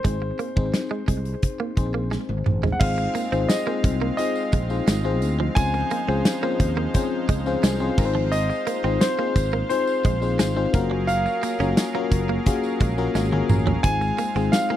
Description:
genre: 1980s-style pop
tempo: 87 BPM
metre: 4/4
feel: straight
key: unclear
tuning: A4 = 440 Hz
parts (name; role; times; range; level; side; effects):
- warm concert grand piano; melody; 0.0-14.8 s; C5 to Ab5; -28 LUFS; right 1 dB; none
- FM electric piano; accompaniment; 0.0-14.8 s; Ab3 to Bb5; -26 LUFS; left 5 dB; chorus
- direct-recorded clean electric guitar; riff; 0.0-14.8 s; F3 to Db4; -31 LUFS; right 6 dB; analog chorus, tape echo
- sustaining fretless electric bass; bass; 0.0-14.5 s; Gb1 to Eb2; -25 LUFS; equal; none
- big rock drum kit; drums; 0.0-14.7 s; crash cymbal, hi-hat, kick drum, snare drum, tambourine, toms; -22 LUFS; equal; none
- pipe organ, strings celeste; sustained chords; 2.8-14.8 s; F3 to F5; -32 LUFS; equal; none
- tambourine; percussion; 2.8-14.7 s; none; -43 LUFS; right 15 dB; none
room: small room ambience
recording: dry, close 1970s-style studio recording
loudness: -20 LUFS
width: side -12 dB against mid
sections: 0.0-2.8 A section; 2.8-14.8 B section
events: drum fill 2.1-2.8, 13.2-13.8; FM electric piano fill 6.9-8.3, 12.8-13.8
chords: 0.0 Ab; 2.8 Ab6; 5.6 Dbmaj7; 8.0 Ab6; 10.7 Gbmaj7; 13.8 Ab6

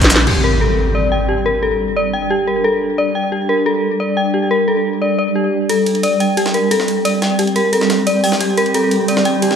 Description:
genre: dark technical drum and bass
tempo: 177 BPM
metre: 4/4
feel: straight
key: G minor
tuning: A4 = 440 Hz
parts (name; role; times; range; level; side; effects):
- swarming drone; sustained chords; 0.0-9.6 s; G3 to G4; -19 LUFS; right 1 dB; built-in reverb, sidechain pumping
- jungle sampler-style drum kit; drums; 0.0-0.2, 5.7-9.6 s; hi-hat, ride cymbal, snare drum; -22 LUFS; right 1 dB; high-pass filter on cymbals, high-pass filter on snare, high-pass filter on hats, high-pass filter on room
- dark detuned synth bell; arpeggios; 0.3-9.5 s; G4 to G5; -16 LUFS; left 1 dB; chorus, tremolo, sidechain pumping, digital delay
- impact and riser; sound effects; 0.3-1.6, 8.7-9.6 s; none; -21 LUFS; equal; none
room: moderate lush hall reverb, RT60 1.8 s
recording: none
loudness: -13 LUFS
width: side -7 dB against mid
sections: 0.3-9.6 A section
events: impact 0.3-1.6; filter sweep on synth drone 0.3-9.6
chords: 0.3 G5

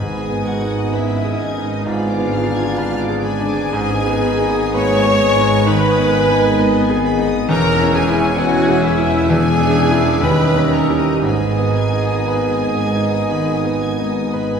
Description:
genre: classical, romantic movement for piano and orchestra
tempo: 56-67 BPM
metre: 4/4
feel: rubato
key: G# minor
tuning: A4 = 440 Hz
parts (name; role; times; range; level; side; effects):
- bright grand piano; melody; 0.0-14.6 s; D#2 to C#5; -20 LUFS; left 2 dB; none
- rich studio violin section; melody; 0.0-14.6 s; C#5 to G#6; -32 LUFS; left 5 dB; none
- clear oboe; second line; 0.0-14.6 s; D5 to E5; -30 LUFS; equal; none
- mellow clarinet; second line; 0.0-14.6 s; G#3 to D#4; -27 LUFS; left 4 dB; none
- rich studio violin section; second line; 0.0-14.6 s; D#5 to C#6; -29 LUFS; left 1 dB; none
- silver concert flute; second line; 0.0-14.6 s; D#5 to C#6; -28 LUFS; equal; none
- rich studio viola section; accompaniment; 0.0-14.6 s; D#4 to C#5; -22 LUFS; right 1 dB; none
- warm bassoon; accompaniment; 0.0-14.6 s; B3 to D4; -28 LUFS; right 3 dB; none
- dark trombone section; sustained chords; 0.0-14.6 s; D3 to G#3; -28 LUFS; right 1 dB; none
- mellow French horn section; sustained chords; 0.0-14.6 s; B3 to G#4; -26 LUFS; left 4 dB; none
- warm trumpet; stabs; 0.0-14.6 s; D#5 to G#5; -26 LUFS; left 1 dB; none
- rich studio double bass section; bass; 0.0-14.6 s; E1 to D#2; -26 LUFS; right 3 dB; none
- warm studio cello section; bass; 0.0-14.6 s; D#2 to G#2; -25 LUFS; right 2 dB; none
- warm tuba; bass; 0.0-14.6 s; E1 to D#2; -26 LUFS; right 3 dB; none
- timpani; percussion; 0.0-1.4 s; G#2; -30 LUFS; left 2 dB; none
room: wet concert hall reverb, RT60 2.2 s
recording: heard from further back in the room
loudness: -14 LUFS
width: side -6 dB against mid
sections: 0.0-14.6 A section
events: none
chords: 0.0 G#m; 1.9 G#dim7; 3.7 G#m; 7.5 C#m/E; 9.3 E7; 10.2 D#7b9; 11.2 G#m

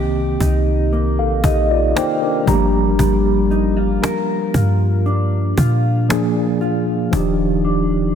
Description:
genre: contemporary R&B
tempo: 58 BPM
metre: 4/4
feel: straight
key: G minor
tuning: A4 = 441 Hz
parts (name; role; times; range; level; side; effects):
- mellow tine electric piano; accompaniment; 0.0-8.2 s; Eb3 to Bb5; -19 LUFS; equal; medium stereo tremolo
- mellow electric guitar; arpeggios; 0.0-8.2 s; Bb2 to Bb4; -22 LUFS; left 2 dB; wide subtle chorus, ping-pong delay
- clean 808-style bass; bass; 0.0-8.2 s; Eb1 to Bb2; -18 LUFS; equal; none
- cajon; drums; 0.4-7.4 s; none; -23 LUFS; equal; none
room: light reverb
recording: none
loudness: -15 LUFS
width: side -8 dB against mid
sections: 0.0-8.2 A section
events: tine electric piano fill 0.9-3.0; hi-hats muted 7.1-8.2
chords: 0.0 Cm7; 2.5 Gm7; 6.1 Bb7; 7.1 Ebmaj9

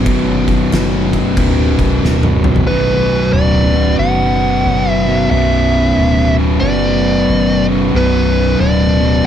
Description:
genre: stoner and doom metal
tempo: 91 BPM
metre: 4/4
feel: swing 64% on 8ths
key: B minor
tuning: A4 = 444 Hz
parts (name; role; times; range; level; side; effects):
- mellow tonewheel organ; sustained chords; 0.0-9.3 s; B3 to B4; -27 LUFS; equal; slow rotary speaker
- distorted electric guitar; riff; 0.0-9.3 s; B1 to B2; -19 LUFS; left 1 dB; overdrive
- fuzz guitar; riff; 0.0-9.3 s; B1 to B2; -19 LUFS; right 10 dB; distortion
- thick fuzz guitar; riff; 0.0-9.3 s; B1 to B2; -18 LUFS; left 8 dB; distortion
- hollow-body short-scale fingered electric bass; bass; 0.0-9.2 s; B0 to G1; -17 LUFS; equal; overdrive
- oversized low-tuned drum kit; drums; 0.1-2.7 s; crash cymbal, kick drum, snare drum, toms; -18 LUFS; equal; none
- fuzz lead guitar; melody; 2.7-9.3 s; B4 to F#5; -17 LUFS; equal; distortion
room: little or no reverb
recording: none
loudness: -11 LUFS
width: side -9 dB against mid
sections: 0.0-2.7 A section; 2.7-9.3 B section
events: drum fill 2.0-2.7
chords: 0.0 Bm

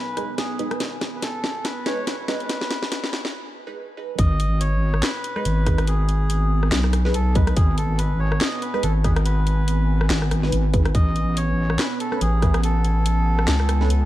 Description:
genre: deep dubstep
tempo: 142 BPM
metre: 4/4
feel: swing 56% on 16ths, half-time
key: G# phrygian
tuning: A4 = 439 Hz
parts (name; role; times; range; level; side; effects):
- melodica; melody; 0.0-14.1 s; G#4 to D#5; -29 LUFS; equal; dub echo
- deep dark ambient pad; sustained chords; 0.0-14.1 s; B3 to G#5; -33 LUFS; right 3 dB; chorus, built-in reverb
- wobble bass; bass; 0.0-14.1 s; G#1 to C#2; -20 LUFS; equal; chorus, high-pass filter
- filtered dub chord stab; stabs; 0.2-13.9 s; G#3 to B4; -32 LUFS; right 3 dB; phaser, lush chorus, dub echo
- garage drum kit; drums; 0.2-14.0 s; handclaps, hi-hat, rim click, snare drum; -26 LUFS; left 1 dB; none
- electronic kick drum; drums; 4.2-12.5 s; none; -19 LUFS; equal; none
room: light reverb, digital ambience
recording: dark, warm production, high-pass filter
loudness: -19 LUFS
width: side -15 dB against mid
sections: 0.0-4.2 A section; 4.2-14.1 B section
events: build-up 0.0-4.2; drum fill 0.0-3.3; break 3.3-4.2; drop 4.2-14.1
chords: 0.0 G#m; 10.9 Aadd9

